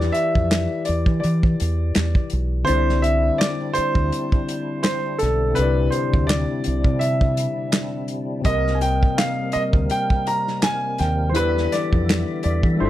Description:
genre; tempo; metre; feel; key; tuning
R&B, neo-soul; 83 BPM; 4/4; swing 56% on 16ths; C major; A4 = 440 Hz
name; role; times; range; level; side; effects
warm concert grand piano; melody; 0.0-12.9 s; A4 to Bb5; -24 LUFS; right 1 dB; slapback echo
overdriven tine electric piano; accompaniment; 0.0-12.9 s; C3 to Eb5; -26 LUFS; left 5 dB; none
deep dub fingered electric bass; bass; 0.0-12.9 s; G1 to E3; -22 LUFS; right 1 dB; none
warm soul drum kit; drums; 0.0-12.8 s; handclaps, hi-hat, kick drum, snare drum; -22 LUFS; equal; none
percussive tonewheel organ; sustained chords; 2.7-12.9 s; D3 to E5; -31 LUFS; right 1 dB; chorus vibrato, slow rotary speaker
room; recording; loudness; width
light reverb; none; -18 LUFS; side -13 dB against mid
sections
0.0-12.9 A section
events
kick muted 2.7-3.4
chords
0.0 Em7; 2.7 Cadd9; 8.5 Cm7; 11.3 Em7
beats
0.51 1.23 1.95 | 2.67 3.40 4.12 4.84 | 5.57 6.29 7.01 7.73 | 8.46 9.18 9.90 10.63 | 11.35 12.07 12.79

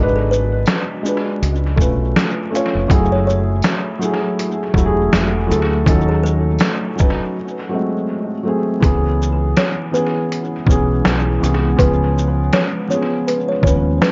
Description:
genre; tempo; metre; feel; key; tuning
lo-fi hip hop; 81 BPM; 4/4; swing 58% on 16ths; C# minor; A4 = 439 Hz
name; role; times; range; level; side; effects
felt-muted upright piano; accompaniment; 0.0-14.1 s; E3 to C#5; -22 LUFS; equal; cassette tape, tape echo
deep dark ambient pad; sustained chords; 0.5-14.1 s; C#3 to B4; -32 LUFS; equal; none
deep dub fingered electric bass; bass; 0.0-14.0 s; E1 to D#2; -20 LUFS; equal; none
kalimba; melody; 0.2-14.1 s; G#4 to C#5; -26 LUFS; equal; tape echo
trip hop sampler-style drum kit; drums; 0.3-14.1 s; hi-hat, kick drum, shaker, snare drum; -20 LUFS; equal; tape echo
tambourine; percussion; 0.7-6.8 s; none; -39 LUFS; equal; none
room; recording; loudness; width
moderate spring reverb, RT60 2.2 s; echo-heavy mix, vinyl crackle, nothing above 7.6 kHz; -17 LUFS; mono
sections
0.0-8.8 A section; 8.8-14.1 B section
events
break 7.3-8.8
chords
0.0 G#m7b5; 1.4 C#7b13; 2.9 F#m9; 5.9 D#m7b5; 7.3 G#7b9; 8.8 C#m7; 11.8 C#7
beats
0.68 1.42 2.16 | 2.90 3.64 4.38 5.12 | 5.86 6.60 7.34 8.08 | 8.82 9.56 10.31 11.05 | 11.79 12.53 13.27 14.01

